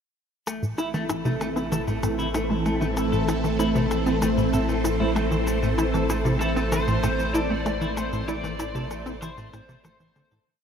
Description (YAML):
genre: ambient, sequencer-driven space music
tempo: 96 BPM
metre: 4/4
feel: straight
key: A minor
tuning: A4 = 440 Hz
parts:
  - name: phased string machine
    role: sustained chords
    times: 0.5-10.5 s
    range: E3 to C5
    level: -26 LUFS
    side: equal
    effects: ensemble chorus, phaser, shimmer reverb
  - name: semi-hollow electric guitar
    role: arpeggios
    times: 0.5-10.4 s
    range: A3 to A4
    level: -32 LUFS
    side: equal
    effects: auto-pan, shimmer reverb, analog delay
  - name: warm sub bass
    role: bass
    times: 0.5-10.4 s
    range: A1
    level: -30 LUFS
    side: equal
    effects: none
  - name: shaker and percussion blips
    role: percussion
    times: 0.5-10.4 s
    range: none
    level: -36 LUFS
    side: left 2 dB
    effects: overdrive, analog delay
  - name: tight sequencer bass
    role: riff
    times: 0.6-10.4 s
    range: A2 to E4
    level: -27 LUFS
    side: equal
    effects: lush chorus, analog delay
  - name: lead guitar through a small cranked amp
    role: melody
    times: 6.4-10.3 s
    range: A4 to D5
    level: -31 LUFS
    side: left 1 dB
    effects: overdrive, analog chorus, shimmer reverb, analog delay
room: wet huge ambient reverb, RT60 7.4 s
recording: dreamy mix soaked in reverb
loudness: -22 LUFS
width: side -7 dB against mid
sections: 0.5-10.5 A section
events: fade-out 7.1-10.5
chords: 0.5 Am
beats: | 0.47 1.10 1.72 2.35 | 2.97 3.60 4.22 4.85 | 5.47 6.10 6.72 7.35 | 7.97 8.60 9.22 9.85